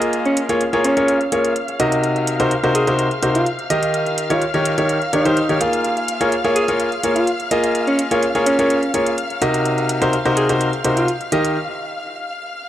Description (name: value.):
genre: piano house.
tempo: 126 BPM.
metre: 4/4.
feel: straight.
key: Bb minor.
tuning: A4 = 440 Hz.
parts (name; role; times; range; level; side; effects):
warm studio string section; sustained chords; 0.0-12.7 s; F5 to F6; -26 LUFS; left 1 dB; low-pass filter.
clear concert grand piano; riff; 0.0-11.6 s; C3 to F5; -17 LUFS; equal; analog delay.
electronic hi-hat; drums; 0.0-11.5 s; none; -28 LUFS; right 2 dB; none.
downlifter; sound effects; 0.0-2.0 s; none; -40 LUFS; equal; none.
dark alto saxophone; melody; 0.3-11.1 s; Db4 to Ab4; -22 LUFS; equal; analog delay.
room: light reverb.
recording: dry, gritty hardware recording.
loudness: -16 LUFS.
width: side -12 dB against mid.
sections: 0.0-12.7 A section.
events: break 11.6-12.7.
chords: 0.0 Bbm7; 1.8 Cm7b5; 3.7 Eb7; 5.8 Bbm7; 9.4 Cm7b5; 11.3 Eb.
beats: | 0.13 0.61 1.08 1.56 | 2.04 2.51 2.99 3.46 | 3.94 4.42 4.89 5.37 | 5.84 6.32 6.80 7.27 | 7.75 8.23 8.70 9.18 | 9.65 10.13 10.61 11.08 | 11.56 12.04 12.51.